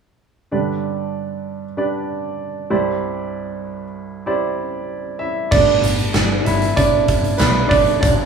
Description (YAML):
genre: piano-driven pop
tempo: 96 BPM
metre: 4/4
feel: straight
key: G major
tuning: A4 = 438 Hz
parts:
  - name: clear baby grand piano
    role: accompaniment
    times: 0.5-8.3 s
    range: C2 to E5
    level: -19 LUFS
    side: right 4 dB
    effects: none
  - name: overdriven picked electric bass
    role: bass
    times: 5.5-8.3 s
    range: F#1 to B1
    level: -21 LUFS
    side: left 1 dB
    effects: none
  - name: huge arena drum kit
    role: drums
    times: 5.5-8.2 s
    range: crash cymbal, hi-hat, kick drum, snare drum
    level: -18 LUFS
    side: equal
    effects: none
  - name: group handclap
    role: percussion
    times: 5.8-7.5 s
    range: none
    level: -33 LUFS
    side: right 3 dB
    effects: none
room: moderate large studio reverb, RT60 1.1 s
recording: band playing live in one room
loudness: -16 LUFS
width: side -6 dB against mid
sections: 0.5-5.5 A section; 5.5-8.3 B section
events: grand piano solo 5.5-8.3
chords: 0.5 G; 2.7 Cadd9; 5.5 Gadd9